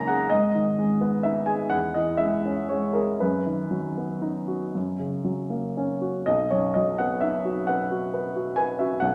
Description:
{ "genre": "classical, romantic nocturne for solo piano", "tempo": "38-45 BPM (dotted quarters)", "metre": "12/8", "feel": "rubato", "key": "B major", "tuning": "A4 = 440 Hz", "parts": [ { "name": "warm upright piano", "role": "solo", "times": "0.0-9.1 s", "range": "B1 to A#5", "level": "-25 LUFS", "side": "equal", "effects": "none" } ], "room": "wet recital hall reverb, RT60 1.6 s", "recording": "none", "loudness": "-25 LUFS", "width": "mono", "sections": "0.0-9.1 A section", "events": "none", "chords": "0.3 G#m; 1.7 C#m/E; 3.2 B/F#; 4.7 F#; 6.3 B" }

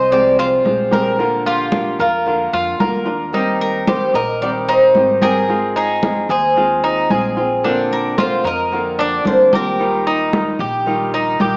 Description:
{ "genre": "latin, Cuban son and guajira", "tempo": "112 BPM", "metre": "4/4", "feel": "straight", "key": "Eb major", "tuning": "A4 = 440 Hz", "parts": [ { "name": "Cuban tres", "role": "melody", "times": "0.0-11.1 s", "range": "F4 to Eb5", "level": "-20 LUFS", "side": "equal", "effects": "none" }, { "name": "Cuban tres", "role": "arpeggios", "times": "0.0-11.6 s", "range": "D4 to C5", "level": "-21 LUFS", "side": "equal", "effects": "none" }, { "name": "upright bass", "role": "bass", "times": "0.0-11.6 s", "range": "Ab1 to F2", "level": "-33 LUFS", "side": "equal", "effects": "none" }, { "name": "flamenco guitar", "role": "accompaniment", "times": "0.1-11.6 s", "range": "C3 to G4", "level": "-24 LUFS", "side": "equal", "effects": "none" }, { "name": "congas", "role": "percussion", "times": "0.1-11.6 s", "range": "none", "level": "-25 LUFS", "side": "equal", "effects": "none" } ], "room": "wet large studio reverb, RT60 1.4 s", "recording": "worn, warbling old tape, cassette tape, warbly pitch drift, small speaker sound", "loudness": "-16 LUFS", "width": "mono", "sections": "0.0-11.6 A section", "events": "none", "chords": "0.0 Fmadd9; 1.2 Bb; 3.3 Eb6; 5.5 Ab6; 7.6 Bbadd9; 9.8 Ebadd9" }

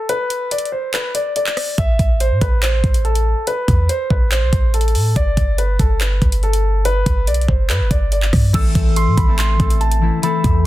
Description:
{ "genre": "hip hop, trap", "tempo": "142 BPM", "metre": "4/4", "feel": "half-time", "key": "A minor", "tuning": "A4 = 440 Hz", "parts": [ { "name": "dark concert grand piano", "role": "melody", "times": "0.0-10.6 s", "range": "A4 to E6", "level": "-21 LUFS", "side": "equal", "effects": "low-pass filter" }, { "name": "trap drum kit", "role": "drums", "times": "0.1-10.5 s", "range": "crash cymbal, handclaps, hi-hat, kick drum, rim click", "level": "-18 LUFS", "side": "equal", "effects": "none" }, { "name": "clean 808-style bass", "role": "bass", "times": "1.8-10.6 s", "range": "G1 to A2", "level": "-16 LUFS", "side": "equal", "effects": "none" }, { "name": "concert harp", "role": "accompaniment", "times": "8.5-10.7 s", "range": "E3 to A4", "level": "-20 LUFS", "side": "left 5 dB", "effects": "low-pass filter" } ], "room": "digital ambience", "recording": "dense, heavily limited modern master", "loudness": "-14 LUFS", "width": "side -15 dB against mid", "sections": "0.0-8.5 A section; 8.5-10.7 B section", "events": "break 0.0-1.8", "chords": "0.0 N.C.; 1.8 Am; 5.2 G; 8.5 Am" }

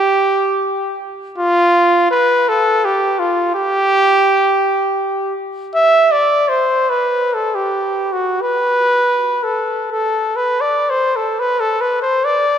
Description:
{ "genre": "classical, free, expressive piece for unaccompanied trumpet", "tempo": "48-86 BPM", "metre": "3/4", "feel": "rubato", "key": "G mixolydian", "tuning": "A4 = 440 Hz", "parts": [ { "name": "warm trumpet", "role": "solo", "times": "0.0-12.6 s", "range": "F4 to E5", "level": "-13 LUFS", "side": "equal", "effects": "none" } ], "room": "wet church reverb, RT60 3.9 s", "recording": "none", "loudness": "-13 LUFS", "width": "side -8 dB against mid", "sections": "0.0-11.4 A section; 11.4-12.6 B section", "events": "none", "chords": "none" }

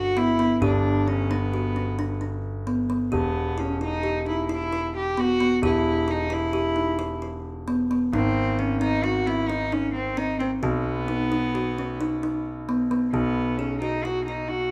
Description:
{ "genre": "contemporary instrumental, chamber music in an uneven meter", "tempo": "264 BPM (eighths)", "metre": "11/8", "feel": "straight", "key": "unclear", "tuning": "A4 = 440 Hz", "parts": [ { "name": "rich cello", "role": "melody", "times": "0.0-14.7 s", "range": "B3 to G4", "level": "-29 LUFS", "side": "equal", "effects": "none" }, { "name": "kalimba", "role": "arpeggios", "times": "0.0-14.6 s", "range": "B3 to G#4", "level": "-29 LUFS", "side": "equal", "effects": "none" }, { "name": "clear concert grand piano", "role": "bass", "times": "0.0-14.7 s", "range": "E1 to B1", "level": "-31 LUFS", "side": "equal", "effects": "none" } ], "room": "moderate recital hall reverb, RT60 1.5 s", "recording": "dark, warm production", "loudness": "-25 LUFS", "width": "mono", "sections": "0.0-13.1 A section; 13.1-14.7 A section", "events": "none", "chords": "0.0 G; 3.1 Em; 8.1 G#; 10.6 B" }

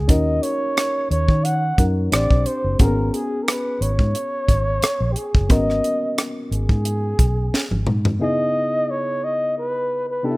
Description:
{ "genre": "lush 1970s-style soul", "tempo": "89 BPM", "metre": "4/4", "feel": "swing 54% on 16ths", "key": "G# minor", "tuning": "A4 = 440 Hz", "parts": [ { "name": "breathy flugelhorn", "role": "melody", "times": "0.0-10.4 s", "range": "G4 to F#5", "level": "-23 LUFS", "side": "equal", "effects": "slapback echo" }, { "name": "reed electric piano", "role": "accompaniment", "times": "0.0-10.4 s", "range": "C3 to C5", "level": "-26 LUFS", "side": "left 2 dB", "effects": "overdrive" }, { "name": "vintage muted fingered electric bass", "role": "bass", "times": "0.0-8.2 s", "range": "F#1 to D#3", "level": "-21 LUFS", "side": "equal", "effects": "none" }, { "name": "tight funk drum kit", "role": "drums", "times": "0.1-8.2 s", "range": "hi-hat, kick drum, rim click, snare drum, toms", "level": "-18 LUFS", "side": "equal", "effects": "none" } ], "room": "studio reverb", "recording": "rough home demo mix", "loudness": "-18 LUFS", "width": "side -22 dB against mid", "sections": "0.0-8.2 A section; 8.2-10.4 B section", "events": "drum fill 7.5-8.2", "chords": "0.0 D#m7; 2.1 Am11; 2.8 G#m11; 8.2 C#m9" }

